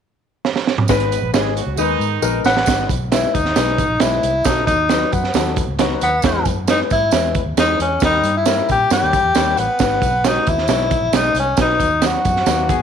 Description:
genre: uptempo 1960s-style soul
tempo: 135 BPM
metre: 4/4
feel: straight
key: G# minor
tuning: A4 = 440 Hz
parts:
  - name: crunchy breakbeat drum kit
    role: drums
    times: 0.4-12.8 s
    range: hi-hat, kick drum, snare drum, toms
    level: -19 LUFS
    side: right 5 dB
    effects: none
  - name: warm horn section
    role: second line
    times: 0.9-2.4 s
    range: D#3 to B4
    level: -23 LUFS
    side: right 11 dB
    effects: none
  - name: warm upright piano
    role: accompaniment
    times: 0.9-12.7 s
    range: F#3 to C#5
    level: -23 LUFS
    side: left 13 dB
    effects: none
  - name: vintage muted fingered electric bass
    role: bass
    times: 0.9-12.7 s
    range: G#1 to A#2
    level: -24 LUFS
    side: left 1 dB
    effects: none
  - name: tambourine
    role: percussion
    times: 0.9-12.8 s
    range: none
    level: -32 LUFS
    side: right 15 dB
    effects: none
  - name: warm tenor saxophone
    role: melody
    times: 2.5-12.8 s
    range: B3 to G4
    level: -17 LUFS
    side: left 1 dB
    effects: slapback echo
  - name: electric guitar through a small old amp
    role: riff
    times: 12.5-12.8 s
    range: A#3 to G#4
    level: -24 LUFS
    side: left 14 dB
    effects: none
room: light reverb, small room ambience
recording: 1960s-style stereo with parts hard left and right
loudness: -14 LUFS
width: side -8 dB against mid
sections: 0.9-2.7 A section; 2.7-12.8 B section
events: drum fill 0.4-0.9, 1.8-2.7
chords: 0.0 N.C.; 0.9 G#m; 4.5 B7; 6.2 E; 8.0 D#; 9.8 G#m; 11.6 B

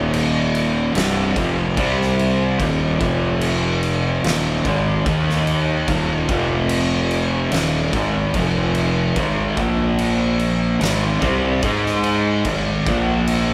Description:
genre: stoner and doom metal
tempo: 73 BPM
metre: 4/4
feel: straight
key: unclear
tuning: A4 = 440 Hz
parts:
  - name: fuzz guitar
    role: riff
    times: 0.0-13.5 s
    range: C2 to Ab4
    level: -21 LUFS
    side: equal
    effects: distortion
  - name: fuzz fingered electric bass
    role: bass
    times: 0.0-13.5 s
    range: C1 to Ab2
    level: -28 LUFS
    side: equal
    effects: overdrive
  - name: oversized low-tuned drum kit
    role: drums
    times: 0.1-13.5 s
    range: crash cymbal, kick drum, snare drum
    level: -27 LUFS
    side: equal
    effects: none
room: light reverb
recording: band playing live in one room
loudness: -19 LUFS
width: mono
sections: 0.0-13.5 A section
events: none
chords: 0.0 Eb5; 1.0 C5; 2.6 Eb5; 3.0 F5; 4.2 Eb5; 6.3 F5; 7.5 Eb5; 8.3 F5; 9.2 Ab5; 9.6 Bb5; 10.8 Ab5; 12.9 Bb5

